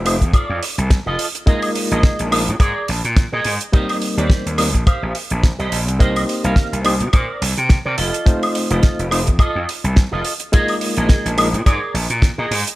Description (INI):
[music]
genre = nu-disco, nu disco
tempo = 106 BPM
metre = 4/4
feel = swing 56% on 16ths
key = unclear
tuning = A4 = 437 Hz
[part]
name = overdriven reed electric piano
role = accompaniment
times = 0.0-11.5 s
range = G3 to C5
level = -23 LUFS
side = equal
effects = fast tremolo, low-pass filter, tape echo
[part]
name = gritty slap bass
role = bass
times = 0.0-12.6 s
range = F1 to C3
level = -20 LUFS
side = equal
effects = overdrive, sidechain pumping
[part]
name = damped 70s drum kit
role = drums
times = 0.1-12.8 s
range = hi-hat, snare drum, woodblock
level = -22 LUFS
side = right 1 dB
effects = studio reverb
[part]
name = kick drum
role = drums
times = 0.2-12.4 s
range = none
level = -13 LUFS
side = equal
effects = studio reverb
[part]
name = electric guitar with an envelope filter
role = riff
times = 0.3-12.6 s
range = F4 to F5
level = -24 LUFS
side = right 2 dB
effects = ensemble chorus, low-pass filter, tape echo
[sound]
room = studio reverb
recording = faint mains hum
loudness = -15 LUFS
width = side -17 dB against mid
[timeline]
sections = 0.0-12.8 A section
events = none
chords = 0.0 F7; 1.5 Bb7sus4; 3.7 Eb6; 6.0 Cm7; 8.0 F7; 10.5 Bb7sus4